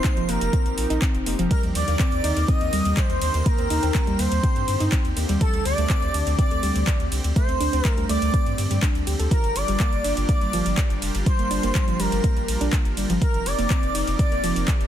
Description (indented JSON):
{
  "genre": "progressive house",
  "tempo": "123 BPM",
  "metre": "4/4",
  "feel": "straight",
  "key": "G minor",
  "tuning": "A4 = 440 Hz",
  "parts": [
    { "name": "expressive synth lead", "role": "melody", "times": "0.0-14.9 s", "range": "A4 to Eb5", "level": "-28 LUFS", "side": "equal", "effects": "analog chorus, sidechain pumping, ping-pong delay" },
    { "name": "airy dreamy lead", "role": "second line", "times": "0.0-14.9 s", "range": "A5 to Eb6", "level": "-35 LUFS", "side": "equal", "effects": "chorus, sidechain pumping, ping-pong delay" },
    { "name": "supersaw pad", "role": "sustained chords", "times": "0.0-14.9 s", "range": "D3 to C5", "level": "-34 LUFS", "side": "equal", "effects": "sidechain pumping" },
    { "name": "soft round pluck", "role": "arpeggios", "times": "0.0-14.6 s", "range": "F3 to A4", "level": "-28 LUFS", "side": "right 1 dB", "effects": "chorus, sidechain pumping, ping-pong delay" },
    { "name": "deep house drum kit", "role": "drums", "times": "0.0-14.9 s", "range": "handclaps, hi-hat, ride cymbal", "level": "-31 LUFS", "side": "right 1 dB", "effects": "overdrive, sidechain pumping on hats, sidechain pumping on cymbals" },
    { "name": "electronic kick drum", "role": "drums", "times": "0.0-14.8 s", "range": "none", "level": "-22 LUFS", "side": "equal", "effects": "overdrive" },
    { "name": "saturated sub bass", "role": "bass", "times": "0.2-14.9 s", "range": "F1 to G2", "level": "-25 LUFS", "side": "equal", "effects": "sidechain pumping" }
  ],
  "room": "digital ambience",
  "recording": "dense, heavily limited modern master",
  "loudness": "-20 LUFS",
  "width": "side -10 dB against mid",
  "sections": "0.0-14.9 A section",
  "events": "none",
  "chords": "0.0 F7sus4; 1.5 Cm7/Eb; 5.4 D7sus4; 9.3 Gm7; 13.2 F7sus4"
}